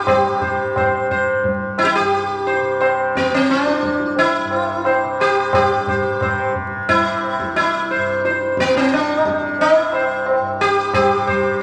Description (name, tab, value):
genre	indian classical, Hindustani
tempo	88 BPM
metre	4/4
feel	straight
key	C raga hamsadhwani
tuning	A4 = 440 Hz
part	sitar	melody	0.0-11.6 s	B3 to C5	-19 LUFS	equal	none
part	tanpura	drone	0.0-11.6 s	C2 to C3	-29 LUFS	equal	none
part	tabla	percussion	0.1-11.5 s	none	-24 LUFS	equal	none
room	wet large studio reverb, RT60 1.2 s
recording	vinyl crackle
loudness	-18 LUFS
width	mono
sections	0.0-5.5 A section; 5.5-11.6 B section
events	none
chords	none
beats	| 0.07 0.75 1.44 2.12 | 2.81 3.49 4.17 4.85 | 5.53 6.21 6.89 7.57 | 8.25 8.92 9.60 10.27 | 10.94 11.61